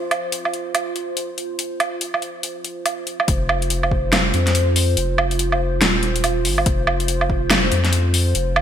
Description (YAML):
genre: deep dubstep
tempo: 142 BPM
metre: 4/4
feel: swing 61% on 16ths, half-time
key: unclear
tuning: A4 = 440 Hz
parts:
  - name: dark analog pad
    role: sustained chords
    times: 0.0-8.6 s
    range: F4 to C5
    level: -26 LUFS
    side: right 1 dB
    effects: chorus, phaser
  - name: dubstep drum kit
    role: drums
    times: 0.1-8.6 s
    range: hi-hat, snare drum, woodblock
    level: -20 LUFS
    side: right 1 dB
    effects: gated reverb
  - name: saturated sub bass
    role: bass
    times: 3.3-8.6 s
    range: Eb1 to F2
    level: -20 LUFS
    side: equal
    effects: none
  - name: electronic kick drum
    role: drums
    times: 3.3-4.0, 6.7-7.4 s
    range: none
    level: -21 LUFS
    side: equal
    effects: overdrive
room: light reverb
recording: bright 1980s-style digital production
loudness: -17 LUFS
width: side -9 dB against mid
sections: 0.0-3.3 A section; 3.3-8.6 B section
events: drop 3.3-8.6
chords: 0.0 F5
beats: 0.32 0.75 1.17 | 1.59 2.01 2.44 2.86 | 3.28 3.70 4.13 4.55 | 4.97 5.39 5.82 6.24 | 6.66 7.08 7.51 7.93 | 8.35